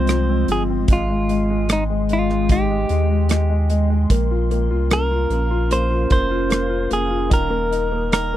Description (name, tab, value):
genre	pop ballad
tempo	75 BPM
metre	4/4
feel	straight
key	Ab major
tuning	A4 = 440 Hz
part	direct-recorded clean electric guitar	melody	0.0-8.4 s	Eb4 to C5	-23 LUFS	right 2 dB	none
part	clear concert grand piano	accompaniment	0.0-8.4 s	Eb3 to F4	-24 LUFS	left 5 dB	none
part	glassy FM pad	sustained chords	0.0-8.4 s	Ab3 to Eb6	-26 LUFS	equal	ensemble chorus, built-in reverb, phaser
part	warm sub bass	bass	0.0-8.4 s	Eb1 to Eb2	-21 LUFS	equal	none
part	modern studio drum kit	drums	0.1-8.3 s	hi-hat, kick drum, rim click	-19 LUFS	right 1 dB	none
room	little or no reverb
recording	dry, close 1970s-style studio recording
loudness	-17 LUFS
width	side -12 dB against mid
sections	0.0-8.4 A section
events	none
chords	0.0 Fm7; 0.9 Abmaj7; 4.1 Bbmadd9; 7.3 Ebadd9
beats	0.09 | 0.90 1.70 2.50 3.30 | 4.11 4.91 5.71 6.51 | 7.32 8.13